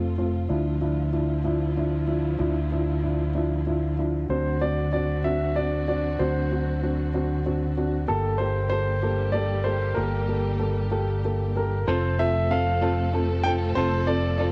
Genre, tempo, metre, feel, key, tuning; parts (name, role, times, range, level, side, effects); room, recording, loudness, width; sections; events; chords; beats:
six-eight pop ballad; 63 BPM (dotted quarters); 6/8; straight; A4 = 441 Hz
dark upright piano; accompaniment; 0.0-14.5 s; F3 to A4; -30 LUFS; equal; cassette tape
warm studio string section; sustained chords; 0.0-14.5 s; C3 to A4; -38 LUFS; equal; cassette tape
fingered electric bass; bass; 0.0-14.5 s; F1 to D2; -28 LUFS; equal
warm concert grand piano; melody; 4.3-14.5 s; A4 to G5; -30 LUFS; equal; cassette tape
direct-recorded clean electric guitar; arpeggios; 11.9-14.5 s; F3 to A4; -37 LUFS; equal
light reverb, small room ambience; home recording on cassette; -25 LUFS; mono
0.0-11.9 A section; 11.9-14.5 B section
0.0 F; 0.5 Dmadd9; 4.3 D7; 8.1 Gmadd9; 11.9 F
| 0.50 1.45 | 2.39 3.34 | 4.29 5.25 | 6.20 7.15 | 8.09 9.04 | 9.98 10.93 | 11.88 12.83 | 13.77